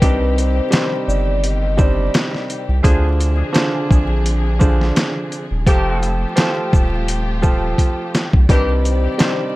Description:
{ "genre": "hip hop, boom-bap hip-hop", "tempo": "85 BPM", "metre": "4/4", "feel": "swing 56% on 16ths", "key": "C minor", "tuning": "A4 = 437 Hz", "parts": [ { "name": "vibraphone with soft mallets", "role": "melody", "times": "0.0-2.1, 8.5-9.5 s", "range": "B4 to Eb5", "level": "-24 LUFS", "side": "left 2 dB", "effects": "high-pass filter, low-pass filter, ping-pong delay" }, { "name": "warm grand piano", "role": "accompaniment", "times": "0.0-9.6 s", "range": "C3 to C5", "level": "-22 LUFS", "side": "right 2 dB", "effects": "high-pass filter, low-pass filter" }, { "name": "dark studio string section", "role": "sustained chords", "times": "0.0-9.6 s", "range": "C3 to D5", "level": "-28 LUFS", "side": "left 1 dB", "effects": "high-pass filter, low-pass filter" }, { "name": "warm horn section", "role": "stabs", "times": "0.0-8.7 s", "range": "C3 to Ab4", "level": "-28 LUFS", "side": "left 2 dB", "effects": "high-pass filter, low-pass filter, ping-pong delay" }, { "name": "soft dub sub bass", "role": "bass", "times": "0.0-9.1 s", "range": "Eb1 to D2", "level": "-18 LUFS", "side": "equal", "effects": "none" }, { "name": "trip hop sampler-style drum kit", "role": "drums", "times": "0.0-9.4 s", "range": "hi-hat, kick drum, shaker, snare drum", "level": "-15 LUFS", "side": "equal", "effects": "vintage 12-bit sampler grit" } ], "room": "little or no reverb", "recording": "vinyl crackle", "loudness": "-14 LUFS", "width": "side -18 dB against mid", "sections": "0.0-9.6 A section", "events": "drum fill 7.8-8.5", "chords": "0.0 Cmadd9; 2.8 Dm7b5; 5.7 Fadd9; 8.5 Cmadd9" }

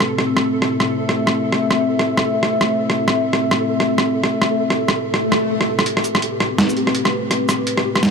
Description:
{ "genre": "half-time drum and bass", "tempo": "166 BPM", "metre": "4/4", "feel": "swing 59% on 16ths, half-time", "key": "A minor", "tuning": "A4 = 439 Hz", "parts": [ { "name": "dark analog pad", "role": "sustained chords", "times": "0.0-8.1 s", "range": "A3 to E5", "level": "-20 LUFS", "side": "left 2 dB", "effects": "chorus, phaser, vintage 12-bit sampler grit" }, { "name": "boom bap sampler-style drum kit", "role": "drums", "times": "0.0-8.1 s", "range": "hi-hat, rim click, shaker, snare drum", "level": "-19 LUFS", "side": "equal", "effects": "overdrive" }, { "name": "pulsing gated texture", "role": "texture", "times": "0.0-8.1 s", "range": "G4 to A4", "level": "-26 LUFS", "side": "right 2 dB", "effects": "chorus, built-in reverb" }, { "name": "swell", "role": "sound effects", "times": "5.2-5.9 s", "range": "none", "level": "-25 LUFS", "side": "left 2 dB", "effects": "none" } ], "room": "moderate huge ambient reverb, RT60 6.2 s", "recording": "dark, warm production", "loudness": "-16 LUFS", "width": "side -5 dB against mid", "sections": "0.0-5.9 A section; 5.9-8.1 B section", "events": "swell 5.2-5.9; build-up 5.9-8.1", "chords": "0.0 Am; 5.9 Amadd9" }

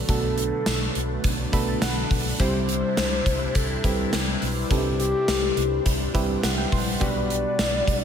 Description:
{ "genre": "1980s-style pop", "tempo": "104 BPM", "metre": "4/4", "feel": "straight", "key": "unclear", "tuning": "A4 = 440 Hz", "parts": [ { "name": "FM electric piano", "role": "accompaniment", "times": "0.0-8.0 s", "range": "B2 to C6", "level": "-28 LUFS", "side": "right 3 dB", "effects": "chorus, slapback echo" }, { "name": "phased analog pad", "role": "sustained chords", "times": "0.0-8.0 s", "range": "C3 to F#5", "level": "-33 LUFS", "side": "equal", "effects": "phaser, chorus" }, { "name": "funky polysynth comp", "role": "stabs", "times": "0.0-8.0 s", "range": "F#3 to C5", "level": "-33 LUFS", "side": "left 5 dB", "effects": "chorus, digital delay, slapback echo" }, { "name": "hollow clarinet-like synth lead", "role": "melody", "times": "0.1-8.0 s", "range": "G4 to D5", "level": "-27 LUFS", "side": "left 2 dB", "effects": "chorus, digital delay, slapback echo" }, { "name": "vintage muted fingered electric bass", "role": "bass", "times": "0.1-8.0 s", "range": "Bb1 to C2", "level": "-29 LUFS", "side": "equal", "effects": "none" }, { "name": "gated 80s drum kit", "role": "drums", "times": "0.1-8.0 s", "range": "hi-hat, kick drum, snare drum, tambourine", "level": "-25 LUFS", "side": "equal", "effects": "none" } ], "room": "light reverb, small room ambience", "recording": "none", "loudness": "-21 LUFS", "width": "side -8 dB against mid", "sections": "0.0-8.0 A section", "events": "FM electric piano fill 1.2-2.4, 5.9-7.0", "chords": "0.0 Bm7; 2.4 Cmaj7; 7.0 Gmaj7" }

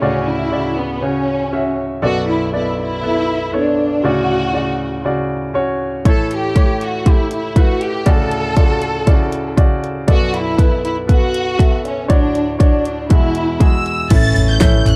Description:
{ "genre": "piano-driven pop", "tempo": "119 BPM", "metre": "4/4", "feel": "straight", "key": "unclear", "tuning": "A4 = 439 Hz", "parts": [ { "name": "warm studio violin section", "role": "melody", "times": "0.0-15.0 s", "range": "B3 to A6", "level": "-22 LUFS", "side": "equal", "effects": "none" }, { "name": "clear concert grand piano", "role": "accompaniment", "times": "0.0-15.0 s", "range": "B1 to E5", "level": "-21 LUFS", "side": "equal", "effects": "none" }, { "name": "pop drum kit", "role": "drums", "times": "6.1-15.0 s", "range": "crash cymbal, hi-hat, kick drum, snare drum, toms", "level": "-15 LUFS", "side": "equal", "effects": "none" }, { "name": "dark French horn section", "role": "second line", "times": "14.1-15.0 s", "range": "C#3 to C#4", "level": "-27 LUFS", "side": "equal", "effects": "none" }, { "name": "vintage muted fingered electric bass", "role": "bass", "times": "14.1-15.0 s", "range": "A1", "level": "-17 LUFS", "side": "equal", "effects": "none" }, { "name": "group handclap", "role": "percussion", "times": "14.6-15.0 s", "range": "none", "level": "-36 LUFS", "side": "equal", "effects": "none" } ], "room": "light reverb", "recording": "dark, warm production", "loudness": "-16 LUFS", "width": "mono", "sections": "0.0-14.1 A section", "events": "none", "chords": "0.0 Dmaj7; 2.0 Bm7; 4.0 Dmaj7; 6.1 A; 8.1 Dmaj7; 10.1 Bm7; 12.1 Dmaj7; 13.1 Eadd9; 14.1 A" }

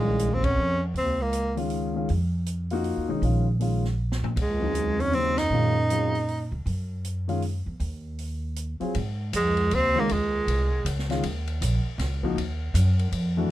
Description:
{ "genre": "modal jazz", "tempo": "158 BPM", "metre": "3/4", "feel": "swing 64% on 8ths", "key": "unclear", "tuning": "A4 = 438 Hz", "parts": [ { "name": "clear tenor saxophone", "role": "melody", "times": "0.0-1.6, 4.4-6.5, 9.4-10.9 s", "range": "G#3 to Eb4", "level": "-25 LUFS", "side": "right 1 dB", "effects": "none" }, { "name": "mellow bass clarinet", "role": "second line", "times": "0.0-1.6, 4.4-6.5, 9.4-10.9 s", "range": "C2 to Gb2", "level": "-30 LUFS", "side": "right 2 dB", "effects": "none" }, { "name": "dark baby grand piano", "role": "accompaniment", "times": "0.0-13.5 s", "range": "Db3 to Ab4", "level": "-29 LUFS", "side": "left 3 dB", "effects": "none" }, { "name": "upright bass", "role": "bass", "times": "0.0-13.5 s", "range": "Bb1 to Bb2", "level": "-26 LUFS", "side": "equal", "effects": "none" }, { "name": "open jazz drum kit", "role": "drums", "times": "0.2-13.2 s", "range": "hi-hat, kick drum, ride cymbal, snare drum, toms", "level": "-36 LUFS", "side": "equal", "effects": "none" } ], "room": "little or no reverb", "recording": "close, detailed microphones", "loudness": "-23 LUFS", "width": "side -14 dB against mid", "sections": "0.0-8.9 A section; 8.9-13.5 B section", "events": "band accent 0.4, 5.3; drum fill 4.0-4.4", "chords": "0.0 Bbm11; 4.4 Ebm11; 8.9 G#7sus4" }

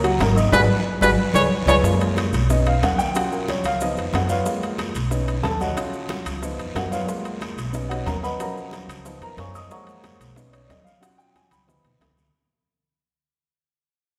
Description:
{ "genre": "Afro-Cuban jazz", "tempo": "183 BPM", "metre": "4/4", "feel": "straight", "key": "unclear", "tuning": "A4 = 440 Hz", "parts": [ { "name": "warm upright piano", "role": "accompaniment", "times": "0.0-12.2 s", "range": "E#3 to D#6", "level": "-27 LUFS", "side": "equal", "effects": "none" }, { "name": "upright bass", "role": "bass", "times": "0.0-12.3 s", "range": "G#1 to F#2", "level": "-27 LUFS", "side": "equal", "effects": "none" }, { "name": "bongos", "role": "percussion", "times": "0.0-12.3 s", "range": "none", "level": "-34 LUFS", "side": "equal", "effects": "none" }, { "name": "congas", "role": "percussion", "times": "0.0-12.2 s", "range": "none", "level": "-32 LUFS", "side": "equal", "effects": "none" }, { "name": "maracas", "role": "percussion", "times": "0.0-12.3 s", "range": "none", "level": "-42 LUFS", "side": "equal", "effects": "none" }, { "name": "timbales", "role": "percussion", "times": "0.0-12.2 s", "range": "none", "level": "-31 LUFS", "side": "equal", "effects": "none" }, { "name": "guiro", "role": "percussion", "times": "0.2-12.3 s", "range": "none", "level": "-40 LUFS", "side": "equal", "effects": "none" }, { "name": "clear trumpet", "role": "melody", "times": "0.5-1.8 s", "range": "B4 to C#5", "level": "-24 LUFS", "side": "equal", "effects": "none" } ], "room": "wet concert hall reverb, RT60 1.8 s", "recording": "recorded in a church or concert hall", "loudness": "-22 LUFS", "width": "mono", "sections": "0.0-1.8 A section; 1.8-12.3 B section", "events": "drum fill 0.5-1.8, 11.3-12.3; band accent 0.5-1.8; fade-out 1.8-12.3; upright piano solo 1.8-12.3", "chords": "0.0 F#; 0.5 G#m7; 1.2 C#5; 1.8 F#maj7; 2.5 Badd9; 3.1 C#add11; 3.8 C#7; 4.5 G#m69; 5.1 Badd9; 5.8 C#add11; 6.4 C#7; 7.1 G#m69; 7.7 Badd9; 8.4 D#m7; 9.1 C#7; 9.7 F#maj7; 10.4 Badd9; 11.0 C#add11; 11.7 C#7" }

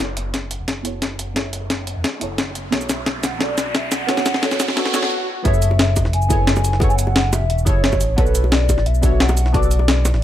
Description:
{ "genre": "liquid drum and bass", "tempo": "176 BPM", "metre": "4/4", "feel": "straight", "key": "F# minor", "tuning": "A4 = 440 Hz", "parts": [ { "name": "hollow clarinet-like synth lead", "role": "melody", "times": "0.0-10.2 s", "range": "C#5 to A5", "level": "-25 LUFS", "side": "left 1 dB", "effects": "lush chorus, digital delay" }, { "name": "deep mellow chord stab", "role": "accompaniment", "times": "0.0-10.2 s", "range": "B3 to D5", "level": "-26 LUFS", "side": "right 2 dB", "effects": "chorus, phaser" }, { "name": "smooth gliding synth bass", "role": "bass", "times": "0.0-10.2 s", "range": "E1 to B1", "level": "-20 LUFS", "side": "equal", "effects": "tube saturation" }, { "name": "breakbeat sampler-style drum kit", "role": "drums", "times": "0.0-10.2 s", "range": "cabasa, hi-hat, snare drum", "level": "-21 LUFS", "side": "left 1 dB", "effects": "none" }, { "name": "electronic kick drum", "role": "drums", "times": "0.0-9.6 s", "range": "none", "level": "-20 LUFS", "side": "equal", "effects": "high-pass filter on kick" }, { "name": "riser and swell", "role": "sound effects", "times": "0.0-5.5 s", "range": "none", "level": "-28 LUFS", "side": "equal", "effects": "none" }, { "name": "bongos", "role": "percussion", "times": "5.5-10.1 s", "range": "none", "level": "-28 LUFS", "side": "equal", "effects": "none" } ], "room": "light reverb, digital ambience", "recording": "high-pass filter", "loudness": "-16 LUFS", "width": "side -12 dB against mid", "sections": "0.0-5.5 A section; 5.5-10.2 B section", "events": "build-up 0.0-5.5; drum fill 0.0-5.1; riser 0.0-5.1; filter sweep on synth stab 0.0-5.5; filter sweep on soft synth lead 0.0-5.5; swell 4.8-5.5; stop 5.1-5.5; drop 5.5-10.2", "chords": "0.0 F#m11; 2.7 Bm9; 5.5 F#m11; 8.2 Bm9" }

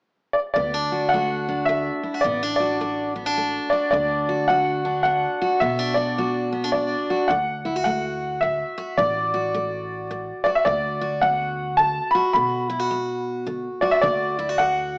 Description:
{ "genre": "honky-tonk and classic country", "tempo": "107 BPM", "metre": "3/4", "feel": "swing 62% on 8ths", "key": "D major", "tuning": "A4 = 438 Hz", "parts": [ { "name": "bright upright piano", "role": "melody", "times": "0.3-15.0 s", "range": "D5 to B5", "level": "-24 LUFS", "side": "equal", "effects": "cassette tape" }, { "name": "picked steel-string acoustic guitar", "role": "accompaniment", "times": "0.6-15.0 s", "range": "A2 to F#4", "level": "-29 LUFS", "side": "equal", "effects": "cassette tape" }, { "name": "upright bass", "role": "bass", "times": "0.6-15.0 s", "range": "A1 to B2", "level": "-35 LUFS", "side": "equal", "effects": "none" } ], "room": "moderate spring reverb, RT60 1.4 s, small room ambience", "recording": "home recording on cassette, small speaker sound", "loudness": "-23 LUFS", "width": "mono", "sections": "0.6-7.3 A section; 7.3-15.0 B section", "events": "none", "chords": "0.0 N.C.; 0.6 D; 3.9 Bm/D; 7.3 D; 10.7 Bm/D; 14.0 D" }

